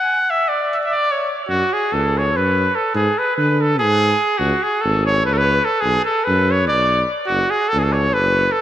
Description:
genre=balkan folk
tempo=289 BPM (eighths)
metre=7/8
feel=straight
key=F# minor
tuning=A4 = 443 Hz
part: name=clear trumpet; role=melody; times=0.0-8.6 s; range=F#4 to F#5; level=-16 LUFS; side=equal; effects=diffuse ambient delay
part: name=warm tuba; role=bass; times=1.5-8.5 s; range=F#1 to D3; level=-19 LUFS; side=equal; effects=none
room=wet plate reverb, RT60 2.8 s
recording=dreamy mix soaked in reverb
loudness=-15 LUFS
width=side -11 dB against mid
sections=0.0-1.5 A section; 1.5-8.6 B section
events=trumpet solo 0.0-1.5; break 0.0-1.5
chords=0.0 N.C.; 1.5 F#5; 3.0 G#dim; 4.4 C#5; 5.9 B5; 7.3 F#5

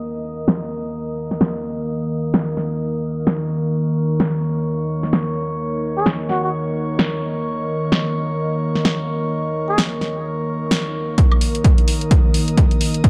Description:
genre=bass house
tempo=129 BPM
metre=4/4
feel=swing 59% on 16ths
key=unclear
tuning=A4 = 440 Hz
part: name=deep dark ambient pad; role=sustained chords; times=0.1-13.1 s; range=Eb3 to Eb5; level=-27 LUFS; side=equal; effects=chorus, built-in reverb, sidechain pumping
part: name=airy breathy pad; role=texture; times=0.0-13.1 s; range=Bb3 to Eb6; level=-27 LUFS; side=equal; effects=chorus, sidechain pumping
part: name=house drum kit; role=drums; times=0.5-13.1 s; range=hi-hat, snare drum, woodblock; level=-23 LUFS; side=equal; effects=high-pass filter on snare, high-pass filter on hats, high-pass filter on perc
part: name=trumpet with plunger mute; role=melody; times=6.0-6.5, 9.7-9.8 s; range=Gb4 to Ab4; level=-26 LUFS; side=equal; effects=digital delay
part: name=electronic kick drum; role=drums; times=11.2-13.1 s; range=none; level=-16 LUFS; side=equal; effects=overdrive
room=light reverb, small room ambience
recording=dark, warm production, low-pass filter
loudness=-20 LUFS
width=mono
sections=0.0-11.2 A section; 11.2-13.1 B section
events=filter sweep on ambient pad 0.0-11.2; filter sweep 0.0-11.2; build-up 11.2-13.1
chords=0.0 Eb5

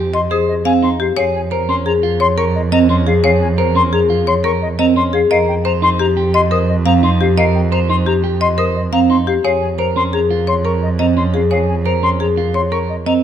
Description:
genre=classical, minimalist pattern music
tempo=174 BPM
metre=6/4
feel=straight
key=unclear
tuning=A4 = 440 Hz
part: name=clean electric guitar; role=arpeggios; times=0.0-13.2 s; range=C4 to C5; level=-19 LUFS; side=right 7 dB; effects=none
part: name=warm cello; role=bass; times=0.0-13.2 s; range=F2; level=-18 LUFS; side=right 3 dB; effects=none
part: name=marimba with medium hard mallets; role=melody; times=0.1-13.2 s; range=G4 to F5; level=-17 LUFS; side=left 6 dB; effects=none
part: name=silver concert flute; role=arpeggios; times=0.1-13.1 s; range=Eb5 to Eb6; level=-20 LUFS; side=left 3 dB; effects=none
room=moderate recital hall reverb, RT60 1.5 s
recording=close, detailed microphones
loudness=-12 LUFS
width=side -9 dB against mid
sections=0.0-13.2 A section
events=none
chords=0.0 F7(no3); 1.2 Bbm9/F; 5.3 Cm7/F; 9.4 Eb9sus4/F (rootless)

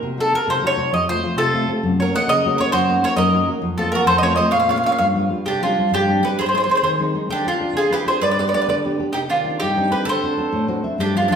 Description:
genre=italian folk, Italian serenade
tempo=132 BPM (dotted quarters)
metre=6/8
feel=rubato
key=C harmonic minor from 5.5 s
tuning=A4 = 440 Hz
part: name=nylon-string guitar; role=accompaniment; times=0.0-11.4 s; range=F2 to E5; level=-22 LUFS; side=left 1 dB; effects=none
part: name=mandolin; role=melody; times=0.2-11.4 s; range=F4 to Gb5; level=-19 LUFS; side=equal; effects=none
part: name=bowl-back mandolin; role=second line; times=1.4-11.4 s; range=D4 to Eb5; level=-25 LUFS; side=right 3 dB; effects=none
room=wet recital hall reverb, RT60 1.6 s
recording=recorded in a church or concert hall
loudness=-16 LUFS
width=side -7 dB against mid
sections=0.0-5.5 A section; 5.5-11.4 B section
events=nylon-string guitar fill 10.5-11.0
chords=0.0 Cdim; 0.9 F; 1.8 Gb; 2.7 Ebm/Gb; 3.6 Fsus4; 4.1 F; 4.5 Bbm; 5.0 G7; 5.5 Csus2; 6.4 Ab; 7.3 Dm7b5; 8.2 G; 9.1 Cmadd9; 10.1 D7

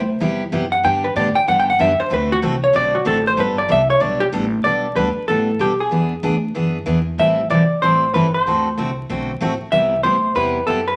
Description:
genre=country, western swing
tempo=189 BPM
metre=4/4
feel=swing 64% on 8ths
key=G major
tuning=A4 = 439 Hz
part: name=vintage hollow-body jazz guitar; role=melody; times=0.0-11.0 s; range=F#4 to G5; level=-19 LUFS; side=equal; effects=none
part: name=upright bass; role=bass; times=0.0-11.0 s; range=G1 to B2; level=-28 LUFS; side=equal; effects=none
part: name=picked steel-string acoustic guitar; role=accompaniment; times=0.2-10.8 s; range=C3 to A4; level=-23 LUFS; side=equal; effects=none
room=wet large studio reverb, RT60 0.9 s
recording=vinyl crackle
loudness=-18 LUFS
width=mono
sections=0.0-4.6 A section; 4.6-11.0 B section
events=hollow-body jazz guitar solo 0.0-4.6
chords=0.0 Cmaj7; 0.8 G; 2.1 D7; 3.4 Gadd9; 5.9 E7; 7.2 Am7; 8.5 D7; 9.7 Cmaj7

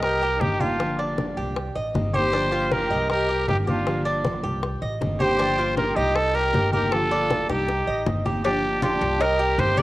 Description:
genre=latin, Cuban son and guajira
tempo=157 BPM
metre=4/4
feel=straight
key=G minor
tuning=A4 = 440 Hz
part: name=growling trumpet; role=melody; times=0.0-9.8 s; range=F4 to D5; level=-24 LUFS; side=right 1 dB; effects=cassette tape
part: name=dark studio violin section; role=second line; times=0.0-9.8 s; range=D4 to Bb4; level=-30 LUFS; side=left 1 dB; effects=cassette tape
part: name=fingerpicked steel-string acoustic guitar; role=accompaniment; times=0.0-9.8 s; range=D3 to G4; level=-31 LUFS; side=equal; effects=cassette tape
part: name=Cuban tres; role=arpeggios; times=0.0-9.8 s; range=D4 to Eb5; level=-28 LUFS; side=right 2 dB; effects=cassette tape
part: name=upright bass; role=bass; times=0.0-9.8 s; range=G1 to C2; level=-29 LUFS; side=equal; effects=none
part: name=bongos and cowbell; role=percussion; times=0.0-9.8 s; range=none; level=-31 LUFS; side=left 4 dB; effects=none
part: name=congas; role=percussion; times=0.0-9.8 s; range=none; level=-31 LUFS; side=left 1 dB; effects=none
room=light reverb, small room ambience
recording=home recording on cassette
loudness=-20 LUFS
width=side -17 dB against mid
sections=0.0-8.4 A section; 8.4-9.8 B section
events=drum fill 7.5-8.4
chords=0.0 Cm7; 0.8 Gm7; 1.6 Cm7; 2.3 Gm7; 3.1 Cm7; 3.9 Gm7; 4.6 Cm7; 5.4 Gm7; 6.2 Cm7; 6.9 Gm7; 7.7 Cm7; 8.4 Gm7; 9.2 Cm7

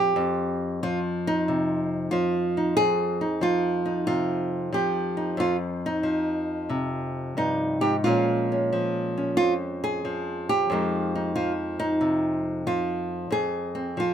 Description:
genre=solo jazz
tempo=92 BPM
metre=4/4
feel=swing 67% on 8ths, rubato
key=F minor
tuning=A4 = 444 Hz
part: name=nylon-string guitar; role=solo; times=0.0-14.1 s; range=F2 to Ab4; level=-23 LUFS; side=equal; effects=none
room=light reverb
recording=close, detailed microphones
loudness=-23 LUFS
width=side -9 dB against mid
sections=0.0-14.1 A section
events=none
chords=0.0 F7(no3); 8.0 Bbm7; 10.7 Fm7

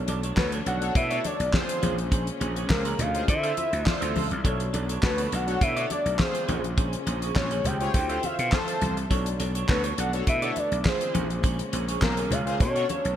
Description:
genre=early-eighties boogie funk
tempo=103 BPM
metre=4/4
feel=straight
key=unclear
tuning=A4 = 440 Hz
part: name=tine electric piano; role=accompaniment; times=0.0-13.2 s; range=C#4 to D#5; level=-36 LUFS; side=left 2 dB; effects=overdrive, fast stereo tremolo
part: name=warm studio string section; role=sustained chords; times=0.0-13.2 s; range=C#3 to E5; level=-39 LUFS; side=left 2 dB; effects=none
part: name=clean electric guitar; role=riff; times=0.1-13.1 s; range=C#4 to E5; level=-36 LUFS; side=right 7 dB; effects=analog chorus
part: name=gritty slap bass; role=bass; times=0.1-13.2 s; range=A#1 to D3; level=-29 LUFS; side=equal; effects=overdrive
part: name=damped 70s drum kit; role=drums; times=0.1-13.2 s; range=handclaps, hi-hat, kick drum, snare drum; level=-27 LUFS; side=equal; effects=gated reverb
part: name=congas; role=percussion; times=0.1-13.0 s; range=none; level=-35 LUFS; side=left 3 dB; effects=none
part: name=fat analog lead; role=melody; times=0.4-13.2 s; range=A#4 to A5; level=-30 LUFS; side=equal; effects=ping-pong delay
part: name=analog synth brass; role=second line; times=0.4-12.9 s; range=E#4 to C#5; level=-36 LUFS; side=left 1 dB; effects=chorus, ping-pong delay
room=light reverb, small room ambience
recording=bright 1980s-style digital production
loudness=-23 LUFS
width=side -10 dB against mid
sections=0.0-13.2 A section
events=none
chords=0.0 Bm9; 1.8 A#m9; 3.3 Dm9; 4.4 Bm9; 6.5 A#m9; 7.9 Dm9; 9.1 Bm9; 11.1 A#m9; 12.6 Bm9

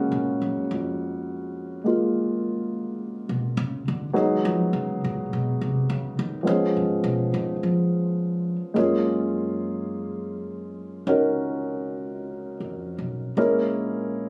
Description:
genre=jazz ballad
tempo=52 BPM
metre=4/4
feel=swing 69% on 8ths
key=F# major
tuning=A4 = 440 Hz
part: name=warm grand piano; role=accompaniment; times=0.0-14.3 s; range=C#3 to A#4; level=-27 LUFS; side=equal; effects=none
part: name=upright bass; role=bass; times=0.0-14.3 s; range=A#1 to E#3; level=-31 LUFS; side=equal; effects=none
room=little or no reverb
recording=recorded on a phone in the room, club reverb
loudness=-26 LUFS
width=mono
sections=0.0-8.8 A section; 8.8-14.3 B section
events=upright bass solo 0.0-8.8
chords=0.0 F#maj9; 4.1 G#m7; 6.4 C#7; 8.8 F#maj9; 13.4 A#m7b5

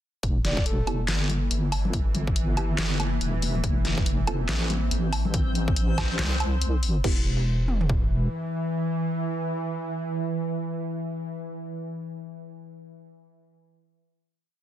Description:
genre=deep dubstep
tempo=141 BPM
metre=4/4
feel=swing 60% on 16ths, half-time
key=E phrygian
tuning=A4 = 439 Hz
part: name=bowed-like drone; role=sustained chords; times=1.4-11.3 s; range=E3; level=-31 LUFS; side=equal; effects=built-in reverb
part: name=deep soft wobble bass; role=bass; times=0.2-8.3 s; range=E1 to C2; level=-26 LUFS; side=equal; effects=chorus
part: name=dubstep drum kit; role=drums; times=0.2-8.0 s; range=kick drum, toms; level=-26 LUFS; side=equal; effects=none
part: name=dubstep drum kit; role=drums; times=0.2-7.1 s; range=crash cymbal, handclaps, hi-hat, snare drum, woodblock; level=-30 LUFS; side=equal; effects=none
part: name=breathy flute-like synth lead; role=melody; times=0.4-1.0 s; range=A4 to D5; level=-37 LUFS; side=equal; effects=chorus, dub echo
part: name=filtered dub chord stab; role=stabs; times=0.9-4.4, 7.0-11.9 s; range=B3 to A4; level=-38 LUFS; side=right 1 dB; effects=phaser, vintage 12-bit sampler grit, dub echo
part: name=congas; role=percussion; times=0.9-5.3 s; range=none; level=-35 LUFS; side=left 4 dB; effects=dub echo
room=digital ambience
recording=dense, heavily limited modern master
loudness=-24 LUFS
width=side -12 dB against mid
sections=0.2-7.0 drop; 7.0-10.4 final chord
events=drop 0.2-7.0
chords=0.2 Em; 3.6 F; 7.0 Em

